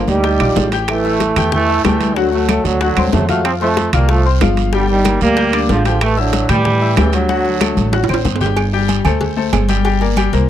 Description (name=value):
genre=latin, salsa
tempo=187 BPM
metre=4/4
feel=straight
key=G minor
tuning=A4 = 440 Hz
part: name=warm trombone section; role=melody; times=0.0-8.2 s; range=C#3 to Eb4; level=-17 LUFS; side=right 3 dB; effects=none
part: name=bright concert grand piano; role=accompaniment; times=0.0-10.5 s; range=F3 to G6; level=-20 LUFS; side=left 10 dB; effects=none
part: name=upright bass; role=bass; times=0.0-10.5 s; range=G1 to A2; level=-17 LUFS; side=right 1 dB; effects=none
part: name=bongos and cowbell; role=percussion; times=0.1-10.5 s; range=none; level=-24 LUFS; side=left 7 dB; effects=none
part: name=congas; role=percussion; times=0.1-10.5 s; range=none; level=-23 LUFS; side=left 2 dB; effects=none
part: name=guiro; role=percussion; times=0.1-10.5 s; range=none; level=-30 LUFS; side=right 18 dB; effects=none
part: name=timbales and agogo bells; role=percussion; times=0.2-10.3 s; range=none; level=-23 LUFS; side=right 7 dB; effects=none
part: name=claves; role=percussion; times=0.4-10.3 s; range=none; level=-27 LUFS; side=right 17 dB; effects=none
room=small room ambience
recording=dry, close 1970s-style studio recording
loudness=-12 LUFS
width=side -11 dB against mid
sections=0.0-8.6 A section; 8.6-10.5 B section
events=drum fill 3.0-3.4, 7.6-8.6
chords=0.0 Gm7; 0.9 A5; 2.2 D7; 3.4 F5; 4.7 Gm; 6.0 A7(no3); 7.3 D7; 8.6 G5; 9.8 Gm